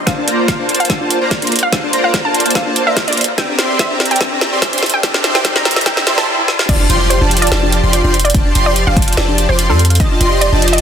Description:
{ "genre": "future bass", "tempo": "145 BPM", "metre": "4/4", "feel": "swing 53% on 16ths, half-time", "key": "F major", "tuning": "A4 = 440 Hz", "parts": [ { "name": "wide unison pluck", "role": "melody", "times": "0.1-10.8 s", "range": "A4 to Bb5", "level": "-20 LUFS", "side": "right 1 dB", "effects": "sidechain pumping, dub echo" }, { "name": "thumb-piano-like synth pluck", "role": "arpeggios", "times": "0.1-10.8 s", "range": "D4 to F5", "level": "-26 LUFS", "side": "left 3 dB", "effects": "chorus, sidechain pumping, tape echo" }, { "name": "big bright polysynth", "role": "riff", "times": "0.1-10.8 s", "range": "F3 to C6", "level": "-16 LUFS", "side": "equal", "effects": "ensemble chorus, sidechain pumping" }, { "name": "electronic kick drum", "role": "drums", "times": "0.1-10.1 s", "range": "none", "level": "-17 LUFS", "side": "equal", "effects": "overdrive, studio reverb" }, { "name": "trap drum kit", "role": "drums", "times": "0.1-10.8 s", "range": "crash cymbal, hi-hat, snare drum", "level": "-16 LUFS", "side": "equal", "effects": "studio reverb, soft clipping on snare" }, { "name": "riser and impact", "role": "sound effects", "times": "1.1-8.3 s", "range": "none", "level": "-26 LUFS", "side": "equal", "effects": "none" }, { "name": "airy dreamy lead", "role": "arpeggios", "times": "6.7-10.8 s", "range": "A5 to C6", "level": "-25 LUFS", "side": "right 1 dB", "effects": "chorus, phaser, sidechain pumping" }, { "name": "warm 808-style bass", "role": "bass", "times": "6.7-10.8 s", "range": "F1 to F2", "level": "-15 LUFS", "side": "equal", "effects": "sidechain pumping" } ], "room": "moderate lush hall reverb, RT60 2.0 s", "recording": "dense, heavily limited modern master, high-pass filter", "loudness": "-11 LUFS", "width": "side -8 dB against mid", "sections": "0.0-6.7 A section; 6.7-10.8 B section", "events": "build-up 0.0-6.7; filter sweep on analog polysynth 0.0-6.7; drum fill 0.1-6.3, 6.5; riser 1.1-6.7; drop 6.7-10.8; impact 6.7-8.3", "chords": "0.1 Bbmaj9; 3.4 C9; 6.7 F69; 10.0 F13" }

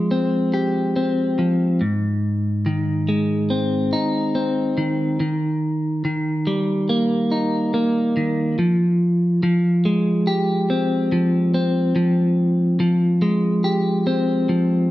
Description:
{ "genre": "rock", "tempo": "71 BPM", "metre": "4/4", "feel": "straight", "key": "F minor", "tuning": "A4 = 440 Hz", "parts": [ { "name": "clean electric guitar", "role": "solo", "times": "0.0-14.9 s", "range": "Ab2 to G4", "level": "-18 LUFS", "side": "equal", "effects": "vibrato effect" } ], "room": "wet stone room reverb, RT60 1.1 s", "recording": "band playing live in one room", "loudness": "-18 LUFS", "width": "side -16 dB against mid", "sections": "0.0-8.6 A section; 8.6-14.9 B section", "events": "build-up 8.6-14.9", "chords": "0.0 Fmadd9; 1.8 Ab; 5.2 Eb; 8.6 Fmadd9" }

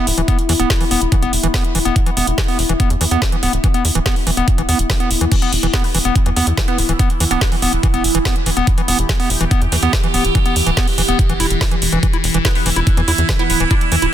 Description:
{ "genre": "psychedelic trance", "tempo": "143 BPM", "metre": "4/4", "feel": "straight", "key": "E minor", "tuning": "A4 = 440 Hz", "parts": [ { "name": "overdriven acid bass", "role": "riff", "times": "0.0-14.1 s", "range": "E3 to E4", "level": "-20 LUFS", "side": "moving between left 3 dB and right 4 dB", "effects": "auto-pan, sidechain pumping, tape echo" }, { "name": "warbly tape-like pad", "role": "texture", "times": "0.0-14.1 s", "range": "B3 to B5", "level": "-26 LUFS", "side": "left 4 dB", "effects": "chorus, built-in reverb, sidechain pumping" }, { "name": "tight sequencer bass", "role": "bass", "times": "0.1-14.1 s", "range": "D1 to E2", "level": "-19 LUFS", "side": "equal", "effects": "none" }, { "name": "garage drum kit", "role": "drums", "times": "0.1-14.1 s", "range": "crash cymbal, hi-hat, snare drum", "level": "-21 LUFS", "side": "right 1 dB", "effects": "none" }, { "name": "electronic kick drum", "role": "drums", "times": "0.3-13.8 s", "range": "none", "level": "-16 LUFS", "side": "equal", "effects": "none" }, { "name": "evolving wavetable pad", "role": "sustained chords", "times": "6.4-14.1 s", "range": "E3 to G4", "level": "-22 LUFS", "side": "right 3 dB", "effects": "phaser, built-in reverb, sidechain pumping" }, { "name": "resonant blip pluck", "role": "second line", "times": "5.7-7.8, 12.4-13.9 s", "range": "B3 to D4", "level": "-28 LUFS", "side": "right 2 dB", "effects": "phaser, wide subtle chorus, sidechain pumping, high-pass filter, dub echo" } ], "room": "little or no reverb", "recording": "dense, heavily limited modern master", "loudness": "-13 LUFS", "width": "side -11 dB against mid", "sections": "0.0-14.1 A section", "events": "none", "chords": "0.0 E5" }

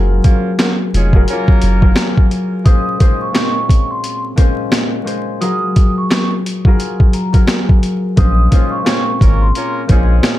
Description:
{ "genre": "hip hop, boom-bap hip-hop", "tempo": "87 BPM", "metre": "4/4", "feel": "swing 58% on 16ths", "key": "Bb minor", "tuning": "A4 = 440 Hz", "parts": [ { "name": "concert harp", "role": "accompaniment", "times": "0.0-10.4 s", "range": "Bb2 to C5", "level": "-19 LUFS", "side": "left 3 dB", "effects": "cassette tape, high-pass filter, low-pass filter" }, { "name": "soft dub sub bass", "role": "bass", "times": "0.0-1.9, 8.2-10.2 s", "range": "F1 to Bb1", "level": "-13 LUFS", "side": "equal", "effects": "none" }, { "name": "clear horn section", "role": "stabs", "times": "0.2-1.9, 8.5-10.4 s", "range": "F3 to Bb4", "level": "-24 LUFS", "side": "right 1 dB", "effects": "high-pass filter, low-pass filter, ping-pong delay" }, { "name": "boom bap sampler-style drum kit", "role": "drums", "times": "0.2-10.4 s", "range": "hi-hat, kick drum, snare drum", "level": "-12 LUFS", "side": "equal", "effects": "none" }, { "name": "finger snap", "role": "percussion", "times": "0.6-10.4 s", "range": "none", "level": "-33 LUFS", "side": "left 3 dB", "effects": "none" }, { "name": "vibraphone with medium mallets", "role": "melody", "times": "2.7-9.7 s", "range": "Bb5 to Eb6", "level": "-21 LUFS", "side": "right 2 dB", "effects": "high-pass filter, low-pass filter" } ], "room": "light reverb", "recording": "dark, warm production, vinyl crackle", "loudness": "-11 LUFS", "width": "side -14 dB against mid", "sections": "0.0-10.4 A section", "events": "break 0.0-2.7", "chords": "0.0 Gbmaj9; 2.7 Bbm9; 5.4 Gbmaj9; 8.2 Bbm9" }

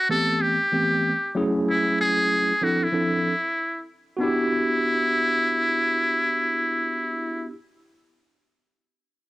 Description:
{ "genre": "hip hop", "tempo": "95 BPM", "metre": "4/4", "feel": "swing 61% on 16ths", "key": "unclear", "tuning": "A4 = 441 Hz", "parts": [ { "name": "trumpet with metal mute", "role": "melody", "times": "0.0-7.5 s", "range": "E4 to A4", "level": "-22 LUFS", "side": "equal", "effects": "cassette tape" }, { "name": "tine electric piano", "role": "accompaniment", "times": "0.1-7.5 s", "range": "E3 to A4", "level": "-25 LUFS", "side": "equal", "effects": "fast stereo tremolo, cassette tape" } ], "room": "light reverb", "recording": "home recording on cassette", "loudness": "-20 LUFS", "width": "side -19 dB against mid", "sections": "0.0-4.2 A section; 4.2-6.7 B section", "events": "none", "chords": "0.0 Am9; 1.4 F#m9; 2.9 Dm9; 4.2 Em9" }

